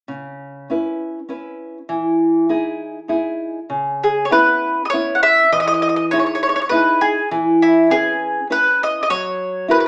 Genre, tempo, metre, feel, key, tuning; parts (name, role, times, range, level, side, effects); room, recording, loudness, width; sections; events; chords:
italian folk, Italian serenade; 100 BPM; 3/4; swing 53% on 8ths, rubato; C# minor; A4 = 441 Hz
nylon-string guitar; accompaniment; 0.1-9.9 s; C#3 to B4; -22 LUFS; equal
mandolin; melody; 4.0-9.8 s; E4 to F#5; -18 LUFS; equal
moderate large studio reverb, RT60 0.9 s; band playing live in one room, small speaker sound; -17 LUFS; mono
0.1-3.7 A section; 3.7-9.9 B section
0.1 C#m7; 1.9 Emaj7; 3.7 C#m7; 5.5 Emaj7; 7.3 C#m7/E; 9.1 F#7